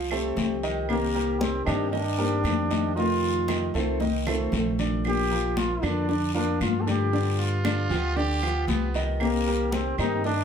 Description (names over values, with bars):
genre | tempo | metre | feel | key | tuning
latin, Cuban son and guajira | 116 BPM | 4/4 | straight | Bb major | A4 = 445 Hz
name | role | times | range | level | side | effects
clear grand piano | arpeggios | 0.0-10.4 s | D3 to Eb5 | -31 LUFS | right 2 dB | none
upright bass | bass | 0.0-10.4 s | Bb1 to G2 | -29 LUFS | equal | none
fingerpicked steel-string acoustic guitar | accompaniment | 0.1-10.3 s | C3 to G4 | -30 LUFS | left 2 dB | none
claves | percussion | 0.1-10.2 s | none | -37 LUFS | right 10 dB | none
congas | percussion | 0.1-10.4 s | none | -31 LUFS | left 5 dB | none
guiro | percussion | 0.4-10.4 s | none | -38 LUFS | left 4 dB | none
brilliant trombone | melody | 0.9-10.4 s | Bb3 to A4 | -28 LUFS | equal | none
growling trumpet | second line | 7.4-9.0 s | B3 to G4 | -31 LUFS | right 3 dB | none
room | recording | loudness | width
wet studio ambience, RT60 0.5 s | heard from further back in the room | -23 LUFS | side -7 dB against mid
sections
0.0-10.4 A section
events
drum fill 4.0-5.1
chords
0.0 Fadd9; 0.9 Cm7; 3.0 F7; 5.1 Bb; 7.1 G7; 9.2 Cm7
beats
0.38 | 0.89 1.41 1.93 2.45 | 2.97 3.49 4.01 4.53 | 5.05 5.57 6.09 6.61 | 7.13 7.65 8.17 8.69 | 9.21 9.73 10.25